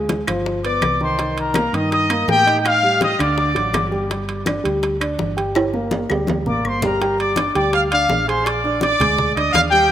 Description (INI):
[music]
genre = latin, salsa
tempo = 165 BPM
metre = 4/4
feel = straight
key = G minor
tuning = A4 = 440 Hz
[part]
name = dark concert grand piano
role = accompaniment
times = 0.0-9.9 s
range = D3 to Ab6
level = -22 LUFS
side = right 1 dB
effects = none
[part]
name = hollow-body short-scale fingered electric bass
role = bass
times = 0.0-9.9 s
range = G1 to A2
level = -26 LUFS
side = equal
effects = none
[part]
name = bongos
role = percussion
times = 0.1-9.9 s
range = none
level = -31 LUFS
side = left 6 dB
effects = none
[part]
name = congas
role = percussion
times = 0.1-9.9 s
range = none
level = -27 LUFS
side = left 2 dB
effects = none
[part]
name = timbales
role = percussion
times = 0.1-9.7 s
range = none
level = -25 LUFS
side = right 5 dB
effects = none
[part]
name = claves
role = percussion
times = 0.3-6.8 s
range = none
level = -31 LUFS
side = left 3 dB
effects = none
[part]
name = bright trumpet section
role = melody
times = 0.6-3.9, 6.5-9.9 s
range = G4 to Eb6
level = -18 LUFS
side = left 1 dB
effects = none
[sound]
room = moderate lush hall reverb, RT60 2.8 s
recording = rough home demo mix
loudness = -16 LUFS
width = side -11 dB against mid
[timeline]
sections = 0.0-7.0 A section; 7.0-9.9 A section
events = drum fill 5.6-7.0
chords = 0.5 G7; 1.2 Cm7; 2.7 F13; 3.4 D; 4.1 Gm; 7.0 Gm7; 8.5 Bb7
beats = 0.10 0.46 0.83 | 1.19 1.56 1.92 2.29 | 2.65 3.02 3.38 3.74 | 4.11 4.47 4.84 5.20 | 5.56 5.92 6.29 6.65 | 7.01 7.37 7.74 8.10 | 8.46 8.82 9.18 9.54 | 9.90